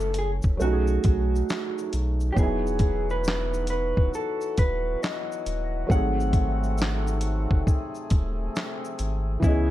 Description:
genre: lo-fi hip hop.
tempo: 68 BPM.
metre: 4/4.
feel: swing 65% on 16ths.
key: unclear.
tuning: A4 = 440 Hz.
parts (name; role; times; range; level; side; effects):
electric guitar through a small old amp; melody; 0.0-9.7 s; E4 to F#5; -30 LUFS; equal; low-pass filter, tape echo.
felt-muted upright piano; accompaniment; 0.0-9.7 s; E3 to G#5; -31 LUFS; right 2 dB; cassette tape, low-pass filter.
warm sub bass; bass; 0.0-9.7 s; D#1 to C#2; -27 LUFS; equal; none.
dusty soul sampler-style drum kit; drums; 0.0-9.7 s; handclaps, hi-hat, kick drum, shaker, snare drum; -25 LUFS; equal; none.
hand-pumped harmonium; sustained chords; 2.4-9.7 s; B#2 to G#4; -36 LUFS; left 2 dB; stereo widening, low-pass filter.
room: little or no reverb.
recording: none.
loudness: -23 LUFS.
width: side -14 dB against mid.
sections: 0.0-9.7 A section.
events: none.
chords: 0.0 F#m7; 0.6 B13; 2.4 Emaj9; 5.9 G#7b9.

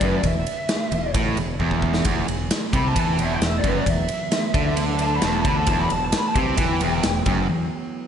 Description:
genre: hard rock.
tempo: 132 BPM.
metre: 4/4.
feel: straight.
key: E minor.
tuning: A4 = 439 Hz.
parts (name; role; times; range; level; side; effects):
lead guitar through a small cranked amp; melody; 0.0-7.7 s; B4 to B5; -26 LUFS; left 1 dB; overdrive, slapback echo, digital delay.
cranked stack guitar; riff; 0.0-7.7 s; E2 to E3; -26 LUFS; right 7 dB; overdrive, slapback echo.
overdriven electric guitar; riff; 0.0-7.7 s; E2 to E3; -28 LUFS; left 8 dB; slapback echo.
growling fingered electric bass; bass; 0.0-7.5 s; E1 to E2; -27 LUFS; equal; overdrive.
big rock drum kit; drums; 0.0-7.4 s; kick drum, ride cymbal, snare drum; -24 LUFS; equal; none.
hollow soft pad; sustained chords; 2.0-8.1 s; E3 to B3; -34 LUFS; right 2 dB; none.
room: moderate lush hall reverb, RT60 1.8 s, studio reverb.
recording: big arena sound, nothing above 11.0 kHz.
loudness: -19 LUFS.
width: side -8 dB against mid.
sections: 0.0-8.1 A section.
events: lead electric guitar solo 0.0-8.1; drum fill 1.6-2.1; break 7.5-8.1.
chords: 0.0 E5.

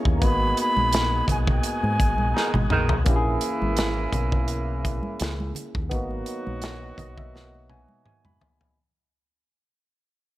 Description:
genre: lush 1970s-style soul.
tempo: 84 BPM.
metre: 4/4.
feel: swing 54% on 16ths.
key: G# minor.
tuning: A4 = 443 Hz.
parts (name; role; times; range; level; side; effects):
barky tine electric piano; accompaniment; 0.0-8.8 s; A#3 to B5; -30 LUFS; equal; wide subtle chorus.
overdriven tonewheel organ; sustained chords; 0.0-3.0 s; G#3 to G#4; -34 LUFS; equal; fast rotary speaker.
fingered electric bass; bass; 0.1-7.8 s; G#1 to G#2; -27 LUFS; equal; none.
modern studio drum kit; drums; 0.1-8.8 s; hi-hat, kick drum, snare drum, toms; -25 LUFS; equal; none.
reedy concert flute; melody; 0.2-2.7 s; G#5 to B5; -25 LUFS; equal; none.
congas; percussion; 0.2-8.6 s; none; -34 LUFS; right 1 dB; none.
dark horn section; stabs; 2.3-8.4 s; B2 to F#4; -30 LUFS; right 3 dB; none.
room: studio reverb.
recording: none.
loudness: -21 LUFS.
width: side -16 dB against mid.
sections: 0.0-3.1 A section; 3.1-8.8 B section.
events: band accent 0.2-3.1; drum fill 2.4-3.1, 7.3-8.8; fade-out 3.1-8.8; tine electric piano fill 6.6-8.8.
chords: 0.2 G#m7; 3.1 A#m7b5; 5.9 G#m7.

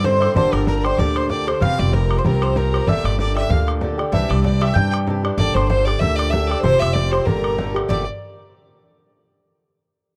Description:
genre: celtic folk, Celtic reel.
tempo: 191 BPM.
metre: 4/4.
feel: swing 55% on 8ths.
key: G dorian.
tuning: A4 = 442 Hz.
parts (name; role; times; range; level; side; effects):
clear fiddle; melody; 0.0-8.1 s; Bb4 to G5; -25 LUFS; equal; none.
mandolin; second line; 0.0-8.1 s; Bb4 to G5; -32 LUFS; equal; none.
tin whistle; second line; 0.0-8.1 s; Bb5 to G6; -35 LUFS; equal; none.
Irish bouzouki; accompaniment; 0.0-8.0 s; G2 to G4; -26 LUFS; equal; none.
upright bass; bass; 0.0-8.1 s; F1 to G2; -23 LUFS; equal; none.
bodhran; percussion; 0.0-8.1 s; none; -27 LUFS; equal; none.
room: studio reverb.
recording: dry, close 1970s-style studio recording.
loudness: -19 LUFS.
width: mono.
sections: 0.0-7.9 A section; 7.9-9.2 B section.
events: none.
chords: 0.4 Gm; 1.6 Fsus2; 2.9 Gm; 4.1 Cadd9; 5.4 Gm; 6.6 Fsus2; 7.3 Gmadd9.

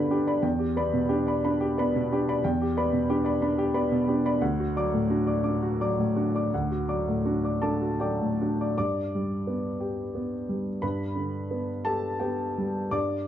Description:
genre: neoclassical minimalist piano.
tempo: 51-62 BPM (dotted quarters).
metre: 6/8.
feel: rubato.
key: G major.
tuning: A4 = 440 Hz.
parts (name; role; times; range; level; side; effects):
warm grand piano; solo; 0.0-13.3 s; D2 to D6; -24 LUFS; equal; none.
room: light reverb.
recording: dark, warm production.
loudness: -24 LUFS.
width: side -10 dB against mid.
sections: 0.0-8.8 A section; 8.8-13.3 B section.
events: none.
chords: 0.4 Em7; 4.4 D; 8.8 G.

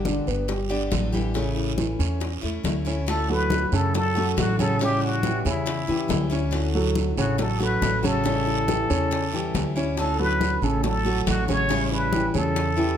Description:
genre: latin, Cuban son and guajira.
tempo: 139 BPM.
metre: 4/4.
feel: straight.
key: D major.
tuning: A4 = 440 Hz.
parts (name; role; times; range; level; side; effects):
picked steel-string acoustic guitar; accompaniment; 0.0-13.0 s; D3 to G4; -31 LUFS; left 4 dB; none.
upright bass; bass; 0.0-12.9 s; G1 to F#2; -27 LUFS; equal; none.
dark concert grand piano; arpeggios; 0.1-13.0 s; C#3 to D5; -26 LUFS; right 1 dB; none.
bongos; percussion; 0.1-12.8 s; none; -33 LUFS; left 7 dB; none.
congas; percussion; 0.1-13.0 s; none; -31 LUFS; left 1 dB; none.
guiro; percussion; 0.1-13.0 s; none; -37 LUFS; right 10 dB; none.
trumpet with plunger mute; melody; 3.1-13.0 s; E4 to C#5; -27 LUFS; equal; none.
room: light reverb.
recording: none.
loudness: -21 LUFS.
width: side -9 dB against mid.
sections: 0.0-3.1 A section; 3.1-13.0 B section.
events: none.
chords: 0.5 G; 1.4 A; 3.1 Dmaj7; 4.8 A7; 6.5 Dmaj7; 8.3 A7; 10.0 Dmaj7; 11.7 A7.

